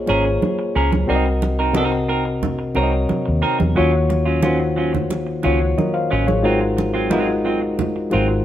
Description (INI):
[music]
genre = lush 1970s-style soul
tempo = 90 BPM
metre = 4/4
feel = straight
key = unclear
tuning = A4 = 440 Hz
[part]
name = reed electric piano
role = accompaniment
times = 0.0-8.4 s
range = C3 to F5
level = -20 LUFS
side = left 2 dB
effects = overdrive
[part]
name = vintage muted fingered electric bass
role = bass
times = 0.0-8.4 s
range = Ab1 to E2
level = -22 LUFS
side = equal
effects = none
[part]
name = semi-hollow electric guitar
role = riff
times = 0.1-8.3 s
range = Gb3 to Bb4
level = -23 LUFS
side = right 4 dB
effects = none
[part]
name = congas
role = percussion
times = 0.1-8.3 s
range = none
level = -24 LUFS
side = right 3 dB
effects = none
[sound]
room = light reverb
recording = none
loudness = -16 LUFS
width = side -12 dB against mid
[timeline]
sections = 0.0-8.4 A section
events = none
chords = 0.0 Bbm7; 1.1 Cm7b5; 3.8 Ebm9; 6.4 Ab13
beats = 0.42 | 1.09 1.76 2.43 3.10 | 3.77 4.44 5.11 5.78 | 6.45 7.12 7.79